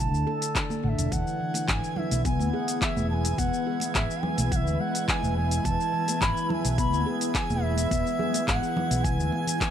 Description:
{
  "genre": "organic downtempo",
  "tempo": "106 BPM",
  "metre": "4/4",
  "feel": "straight",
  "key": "E major",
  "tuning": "A4 = 440 Hz",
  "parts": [
    { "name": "bright reedy bass bansuri", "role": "melody", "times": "0.0-9.7 s", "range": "E5 to B5", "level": "-31 LUFS", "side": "right 2 dB", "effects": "digital delay" },
    { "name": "handpan", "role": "arpeggios", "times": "0.0-9.7 s", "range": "D3 to A4", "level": "-30 LUFS", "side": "left 2 dB", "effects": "ping-pong delay" },
    { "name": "mellow fretless electric bass", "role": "bass", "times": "0.0-9.3 s", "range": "E1 to D2", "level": "-28 LUFS", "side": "equal", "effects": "wide subtle chorus, sidechain pumping" },
    { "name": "organic electronic drum kit", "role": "drums", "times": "0.0-9.7 s", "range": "handclaps, hi-hat, shaker", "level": "-30 LUFS", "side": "left 2 dB", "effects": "none" },
    { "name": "congas", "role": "percussion", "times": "0.3-9.4 s", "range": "none", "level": "-35 LUFS", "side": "right 3 dB", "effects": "none" },
    { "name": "electronic kick drum", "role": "drums", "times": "0.6-9.7 s", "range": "none", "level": "-30 LUFS", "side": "equal", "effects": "none" },
    { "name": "granular cloud pad", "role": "sustained chords", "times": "2.1-9.7 s", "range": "G#3 to E5", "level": "-35 LUFS", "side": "equal", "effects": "built-in reverb, sidechain pumping" },
    { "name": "drifting glass-harmonics texture", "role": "texture", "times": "1.3-9.7 s", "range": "G#6", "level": "-40 LUFS", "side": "right 4 dB", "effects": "chorus, built-in reverb" }
  ],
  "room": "light reverb",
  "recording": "none",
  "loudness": "-24 LUFS",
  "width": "side -9 dB against mid",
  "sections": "0.0-9.7 A section",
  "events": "none",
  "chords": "0.0 Dsus2; 1.1 E",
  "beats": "0.56 | 1.12 1.69 2.25 2.82 | 3.38 3.95 4.52 5.08 | 5.65 6.21 6.78 7.35 | 7.91 8.48 9.05 9.61"
}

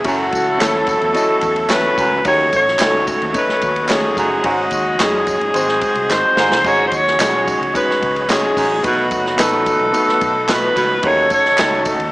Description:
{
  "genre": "uptempo 1960s-style soul",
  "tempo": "109 BPM",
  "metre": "4/4",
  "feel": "straight",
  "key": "unclear",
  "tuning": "A4 = 440 Hz",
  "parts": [
    { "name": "warm alto saxophone", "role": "melody", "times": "0.0-11.8 s", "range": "F#4 to C#5", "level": "-16 LUFS", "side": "equal", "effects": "slapback echo" },
    { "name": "clear concert grand piano", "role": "accompaniment", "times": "0.0-12.0 s", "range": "G#3 to D#5", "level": "-21 LUFS", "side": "left 1 dB", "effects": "none" },
    { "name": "bright tonewheel organ", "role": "sustained chords", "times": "0.0-12.1 s", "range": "F#3 to E4", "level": "-27 LUFS", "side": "equal", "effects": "none" },
    { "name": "vintage muted fingered electric bass", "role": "bass", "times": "0.0-12.1 s", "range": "F#1 to G#2", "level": "-32 LUFS", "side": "equal", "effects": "none" },
    { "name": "swinging big-band drum kit", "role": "drums", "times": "0.0-12.1 s", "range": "crash cymbal, hi-hat, kick drum, ride cymbal, snare drum", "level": "-23 LUFS", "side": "equal", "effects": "none" },
    { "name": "warm horn section", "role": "second line", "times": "0.1-12.1 s", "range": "F#3 to D#5", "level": "-23 LUFS", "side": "right 1 dB", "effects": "none" },
    { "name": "warm baritone saxophone", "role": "riff", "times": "0.1-11.3 s", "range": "D#2 to B2", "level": "-20 LUFS", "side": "right 2 dB", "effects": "none" },
    { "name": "tambourine and handclaps", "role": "percussion", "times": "0.1-12.0 s", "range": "none", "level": "-25 LUFS", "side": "right 1 dB", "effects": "none" }
  ],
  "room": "light reverb",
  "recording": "small speaker sound",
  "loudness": "-13 LUFS",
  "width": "side -20 dB against mid",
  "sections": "0.0-12.1 A section",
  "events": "drum fill 6.1-6.6",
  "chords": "0.1 F#m7; 2.3 D#m7b5; 4.4 G#7sus4; 5.5 G#7; 6.6 G#7sus4; 8.8 B7; 11.0 D#m7b5",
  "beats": "| 0.05 0.60 1.15 1.70 | 2.25 2.80 3.35 3.90 | 4.45 5.00 5.55 6.10 | 6.64 7.19 7.74 8.29 | 8.84 9.39 9.94 10.49 | 11.04 11.59"
}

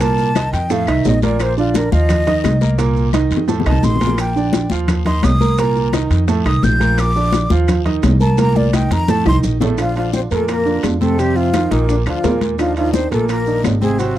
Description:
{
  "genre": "Afro-Cuban jazz",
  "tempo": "172 BPM",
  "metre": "4/4",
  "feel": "straight",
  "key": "Bb major",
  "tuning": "A4 = 439 Hz",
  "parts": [
    { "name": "breathy mellow silver concert flute", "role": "melody", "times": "0.0-14.2 s", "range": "D4 to G6", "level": "-21 LUFS", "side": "left 2 dB", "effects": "none" },
    { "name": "clear upright piano", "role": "accompaniment", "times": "0.0-14.2 s", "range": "A2 to Bb5", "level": "-20 LUFS", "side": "right 6 dB", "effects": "none" },
    { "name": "upright bass", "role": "bass", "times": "0.0-14.2 s", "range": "Ab1 to F2", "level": "-17 LUFS", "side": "equal", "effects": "none" },
    { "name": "bongos", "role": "percussion", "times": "0.0-14.1 s", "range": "none", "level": "-24 LUFS", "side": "left 8 dB", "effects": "none" },
    { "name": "congas", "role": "percussion", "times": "0.0-14.2 s", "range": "none", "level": "-21 LUFS", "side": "left 3 dB", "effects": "none" },
    { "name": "guiro", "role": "percussion", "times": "0.0-14.2 s", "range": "none", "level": "-36 LUFS", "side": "left 18 dB", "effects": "none" },
    { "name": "maracas", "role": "percussion", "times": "0.0-14.2 s", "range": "none", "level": "-38 LUFS", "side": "right 12 dB", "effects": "none" },
    { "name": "timbales", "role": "percussion", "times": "0.0-14.2 s", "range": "none", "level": "-26 LUFS", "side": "right 5 dB", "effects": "none" },
    { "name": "claves", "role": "percussion", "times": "0.4-13.8 s", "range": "none", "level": "-33 LUFS", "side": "left 18 dB", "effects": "none" },
    { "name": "warm French horn", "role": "second line", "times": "9.8-14.2 s", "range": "D3 to C4", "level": "-26 LUFS", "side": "left 11 dB", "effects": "none" }
  ],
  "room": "light reverb",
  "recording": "dry, close 1970s-style studio recording",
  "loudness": "-13 LUFS",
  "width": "side -13 dB against mid",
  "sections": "0.0-9.8 A section; 9.8-14.2 B section",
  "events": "flute solo 0.0-9.8; drum fill 3.1-4.2, 8.4-9.8, 14.0",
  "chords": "0.0 Cm7; 0.7 F7; 1.4 Bb; 2.1 Cm7; 3.5 F7; 4.2 Bb6; 4.9 Cm7; 6.3 F7; 7.0 Bb; 7.7 Cm7; 9.1 F7; 9.8 Bbadd9; 11.2 F7sus4; 11.9 Bb; 12.6 Eb5",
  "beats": "| 0.00 0.35 0.70 1.05 | 1.40 1.75 2.10 2.44 | 2.79 3.14 3.49 3.84 | 4.19 4.54 4.89 5.24 | 5.59 5.93 6.29 6.63 | 6.98 7.33 7.68 8.03 | 8.38 8.73 9.08 9.44 | 9.79 10.14 10.49 10.84 | 11.19 11.54 11.89 12.24 | 12.59 12.94 13.29 13.64 | 13.99"
}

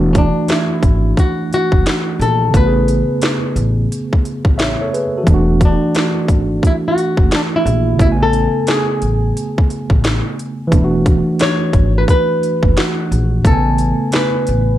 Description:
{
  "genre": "lo-fi hip hop",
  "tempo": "88 BPM",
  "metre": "4/4",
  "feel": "swing 63% on 16ths",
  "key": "A major",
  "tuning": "A4 = 442 Hz",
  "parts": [
    { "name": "mellow tine electric piano", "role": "accompaniment", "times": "0.0-14.8 s", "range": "B2 to G#5", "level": "-18 LUFS", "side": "right 1 dB", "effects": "medium stereo tremolo, cassette tape, low-pass filter" },
    { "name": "upright bass", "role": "bass", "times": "0.0-14.8 s", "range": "E1 to Bb1", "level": "-17 LUFS", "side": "equal", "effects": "none" },
    { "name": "flamenco guitar", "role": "melody", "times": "0.1-14.8 s", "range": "C#4 to C#5", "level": "-19 LUFS", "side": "left 1 dB", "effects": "low-pass filter, plate reverb" },
    { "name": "garage drum kit", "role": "drums", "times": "0.1-14.7 s", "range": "hi-hat, kick drum, snare drum", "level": "-16 LUFS", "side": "equal", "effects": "none" }
  ],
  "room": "light reverb",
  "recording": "none",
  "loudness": "-12 LUFS",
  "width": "side -13 dB against mid",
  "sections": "0.0-14.8 A section",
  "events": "none",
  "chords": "0.0 E9sus4; 2.5 Amaj9; 5.3 E9sus4; 8.0 Amaj9; 10.7 E9sus4; 13.4 Amaj9",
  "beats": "0.49 1.17 1.86 | 2.54 3.22 3.90 4.58 | 5.26 5.95 6.63 7.31 | 7.99 8.67 9.36 10.04 | 10.72 11.40 12.08 12.77 | 13.45 14.13"
}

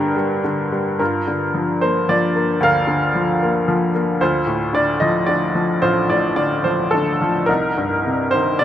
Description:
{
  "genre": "classical, lyrical solo piano",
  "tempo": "110 BPM",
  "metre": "3/4",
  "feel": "rubato",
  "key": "G minor",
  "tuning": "A4 = 441 Hz",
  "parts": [
    { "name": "bright upright piano", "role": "solo", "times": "0.0-8.6 s", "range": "A1 to F5", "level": "-16 LUFS", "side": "equal", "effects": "none" }
  ],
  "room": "moderate recital hall reverb, RT60 1.6 s",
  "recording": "nothing above 10.6 kHz",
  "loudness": "-16 LUFS",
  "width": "side -11 dB against mid",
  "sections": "0.0-1.0 A section; 1.0-8.6 B section",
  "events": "none",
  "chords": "0.0 Gm; 1.0 Gm7; 4.2 Dm7; 7.5 Cm7",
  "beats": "0.44 | 1.00 1.54 2.08 | 2.61 3.14 3.67 | 4.20 4.74 5.28 | 5.82 6.37 6.93 | 7.49 8.05 8.61"
}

